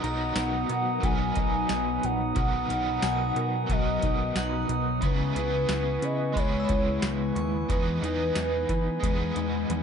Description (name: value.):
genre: dream pop.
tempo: 90 BPM.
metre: 4/4.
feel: straight.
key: B major.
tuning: A4 = 440 Hz.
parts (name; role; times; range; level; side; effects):
overdriven semi-hollow guitar; accompaniment; 0.0-9.8 s; B2 to A#4; -34 LUFS; right 6 dB; tremolo, analog chorus.
glass harmonica; sustained chords; 0.0-9.8 s; B3 to D#6; -34 LUFS; right 1 dB; none.
mellow electric guitar; arpeggios; 0.0-9.8 s; B2 to B4; -31 LUFS; left 5 dB; analog chorus, ping-pong delay.
plucky analog bass; bass; 0.0-9.8 s; A#1 to E3; -32 LUFS; equal; none.
booming analog drum machine; drums; 0.0-9.8 s; hi-hat, kick drum, snare drum, tambourine, toms; -29 LUFS; equal; none.
glassy synth bell; texture; 0.0-8.2 s; F#5 to E6; -42 LUFS; left 5 dB; chorus, ping-pong delay.
hollow clarinet-like synth lead; melody; 0.4-9.7 s; B4 to G#5; -31 LUFS; right 1 dB; chorus, ping-pong delay.
room: light reverb, digital ambience.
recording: nothing above 10.9 kHz.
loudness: -24 LUFS.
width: side -7 dB against mid.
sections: 0.0-9.8 A section.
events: none.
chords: 0.0 Bmaj7; 5.0 C#m7; 7.7 Emaj7.